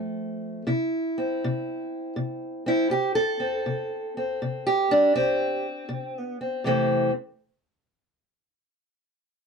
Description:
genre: acoustic country blues, solo or duo.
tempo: 80 BPM.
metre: 4/4.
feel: swing 66% on 8ths.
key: C major.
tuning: A4 = 440 Hz.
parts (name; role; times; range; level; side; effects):
fingerpicked steel-string acoustic guitar; solo; 0.0-7.1 s; F2 to A4; -24 LUFS; equal; none.
room: moderate studio reverb, RT60 0.5 s.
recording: none.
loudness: -24 LUFS.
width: side -5 dB against mid.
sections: 0.0-6.6 A section; 6.6-9.5 B section.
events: none.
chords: 0.0 F; 0.7 C; 6.6 C6.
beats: | 0.68 1.42 2.17 2.91 | 3.66 4.41 5.15 5.90 | 6.65.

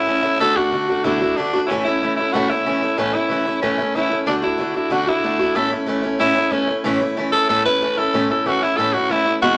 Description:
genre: rock.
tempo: 186 BPM.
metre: 4/4.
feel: straight.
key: A major.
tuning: A4 = 440 Hz.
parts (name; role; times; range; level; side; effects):
growling tenor saxophone; melody; 0.0-9.6 s; C#4 to B4; -21 LUFS; equal; none.
picked steel-string acoustic guitar; accompaniment; 0.0-9.6 s; E2 to F#4; -23 LUFS; equal; none.
room: wet studio reverb, RT60 0.8 s.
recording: none.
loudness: -19 LUFS.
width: mono.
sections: 0.0-9.6 A section.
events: none.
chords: 0.4 D; 1.7 A; 4.3 D; 5.6 A.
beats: 0.08 | 0.40 0.72 1.04 1.37 | 1.69 2.01 2.34 2.66 | 2.98 3.30 3.63 3.95 | 4.27 4.59 4.92 5.24 | 5.56 5.88 6.20 6.53 | 6.85 7.17 7.49 7.81 | 8.13 8.46 8.78 9.10 | 9.42.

